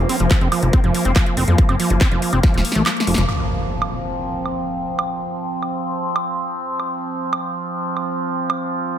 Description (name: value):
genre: psychedelic trance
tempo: 141 BPM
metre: 4/4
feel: straight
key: unclear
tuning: A4 = 440 Hz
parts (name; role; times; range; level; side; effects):
- overtone-sweeping drone; sustained chords; 0.0-9.0 s; F3 to C4; -24 LUFS; equal; chorus, built-in reverb, sidechain pumping
- overdriven acid bass; riff; 0.0-3.2 s; F3 to C4; -22 LUFS; equal; auto-pan, sidechain pumping, ping-pong delay
- plucky analog bass; bass; 0.0-3.2 s; Eb1 to F2; -19 LUFS; equal; tube saturation
- big-room dance drum kit; drums; 0.1-8.6 s; handclaps, hi-hat, snare drum, woodblock; -23 LUFS; right 2 dB; none
- electronic kick drum; drums; 0.3-2.5 s; none; -16 LUFS; equal; none
- impact; sound effects; 3.3-5.0 s; none; -28 LUFS; equal; none
room: light reverb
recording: none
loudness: -17 LUFS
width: side -10 dB against mid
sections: 0.0-3.3 A section; 3.3-9.0 B section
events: drum fill 2.4-3.3; kick drops out 2.9-3.3; band accent 3.1; impact 3.3-5.0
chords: 0.0 F5